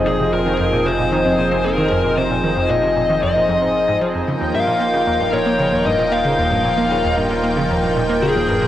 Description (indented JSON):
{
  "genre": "ambient, sequencer-driven space music",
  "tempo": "114 BPM",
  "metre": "4/4",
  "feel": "straight",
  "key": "F minor",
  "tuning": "A4 = 441 Hz",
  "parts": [
    { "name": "lush unison pad", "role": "sustained chords", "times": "0.0-8.7 s", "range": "F3 to G5", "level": "-19 LUFS", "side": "right 1 dB", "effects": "chorus" },
    { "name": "analog pluck", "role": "riff", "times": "0.0-8.7 s", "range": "Eb2 to Bb3", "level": "-22 LUFS", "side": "right 1 dB", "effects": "chorus, ping-pong delay" },
    { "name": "warm sub bass", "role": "bass", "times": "0.0-8.7 s", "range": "Eb1 to F1", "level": "-29 LUFS", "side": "equal", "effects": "tube saturation" },
    { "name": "high-gain lead guitar", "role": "melody", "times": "0.1-8.7 s", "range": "Ab4 to F5", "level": "-19 LUFS", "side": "left 3 dB", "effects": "distortion, cassette tape, ping-pong delay" }
  ],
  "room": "wet spring reverb, RT60 1.7 s",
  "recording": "home recording on cassette",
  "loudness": "-15 LUFS",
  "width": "side -12 dB against mid",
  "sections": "0.0-8.7 A section",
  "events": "none",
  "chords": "0.0 Fm7; 4.3 Ebadd9",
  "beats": "| 0.07 0.60 1.12 1.65 | 2.17 2.70 3.23 3.75 | 4.28 4.81 5.33 5.86 | 6.39 6.91 7.44 7.96 | 8.49"
}